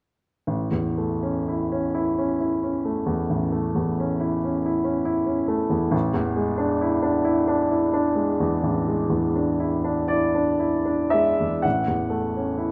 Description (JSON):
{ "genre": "classical, romantic nocturne for solo piano", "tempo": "37-47 BPM (dotted quarters)", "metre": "12/8", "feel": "rubato", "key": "A major", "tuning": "A4 = 438 Hz", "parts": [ { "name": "warm baby grand piano", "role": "solo", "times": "0.5-12.7 s", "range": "A1 to F#5", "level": "-23 LUFS", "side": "equal", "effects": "none" } ], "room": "wet large studio reverb, RT60 1.2 s", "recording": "none", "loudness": "-23 LUFS", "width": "mono", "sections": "0.5-11.6 A section; 11.6-12.7 B section", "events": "none", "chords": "0.5 A; 5.9 E7/A; 11.6 A", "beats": "| 0.47 1.95 3.31 4.65 | 5.93 7.27 8.65 10.10 | 11.64" }